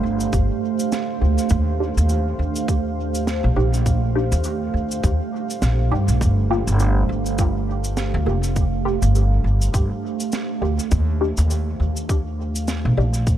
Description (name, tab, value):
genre	ambient dub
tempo	102 BPM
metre	4/4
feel	swing 58% on 16ths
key	G minor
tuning	A4 = 440 Hz
part	deep dark ambient pad	sustained chords	0.0-13.4 s	A3 to F5	-25 LUFS	right 4 dB	chorus, built-in reverb
part	upright bass	bass	0.0-13.4 s	F1 to G2	-20 LUFS	equal	tube saturation
part	cabasa and snare drum	drums	0.2-13.4 s	none	-30 LUFS	right 1 dB	dub echo
part	electronic kick drum	drums	0.3-13.4 s	none	-21 LUFS	equal	none
part	filtered dub chord stab	stabs	1.2-13.1 s	Bb3 to G4	-27 LUFS	left 1 dB	phaser, analog chorus, dub echo
room	light reverb, small room ambience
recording	none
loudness	-18 LUFS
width	side -11 dB against mid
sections	0.0-13.4 A section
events	filter sweep on synth stab 0.0-13.4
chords	0.0 G7(no3); 1.5 Ebmaj7; 6.2 Gm7; 10.9 Ebmaj7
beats	0.33 0.92 | 1.50 2.09 2.68 3.27 | 3.86 4.45 5.03 5.62 | 6.21 6.80 7.39 7.97 | 8.56 9.15 9.74 10.33 | 10.92 11.51 12.09 12.68 | 13.27